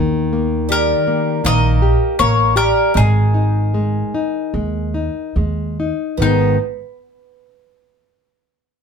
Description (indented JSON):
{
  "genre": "fado-style ballad",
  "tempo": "70-82 BPM",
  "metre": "4/4",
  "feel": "rubato",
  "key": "G# minor",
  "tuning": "A4 = 441 Hz",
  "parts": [
    { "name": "nylon-string guitar", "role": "accompaniment", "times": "0.0-6.6 s", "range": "G#2 to G4", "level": "-19 LUFS", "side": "left 3 dB", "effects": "none" },
    { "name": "upright bass", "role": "bass", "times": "0.0-6.6 s", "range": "G#1 to D#2", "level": "-17 LUFS", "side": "right 1 dB", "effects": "none" },
    { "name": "bowl-back mandolin", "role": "melody", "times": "0.7-6.6 s", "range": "D#4 to D#5", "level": "-20 LUFS", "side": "left 3 dB", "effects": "none" },
    { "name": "picked twelve-string acoustic guitar", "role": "second line", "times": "0.7-6.5 s", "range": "D#3 to B3", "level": "-22 LUFS", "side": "right 3 dB", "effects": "none" }
  ],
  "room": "wet studio ambience, RT60 0.5 s",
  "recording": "band playing live in one room",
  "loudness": "-14 LUFS",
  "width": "side -6 dB against mid",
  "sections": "0.0-6.2 A section; 6.2-8.8 B section",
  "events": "none",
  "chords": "0.0 D#; 2.9 G#5; 6.2 G#m"
}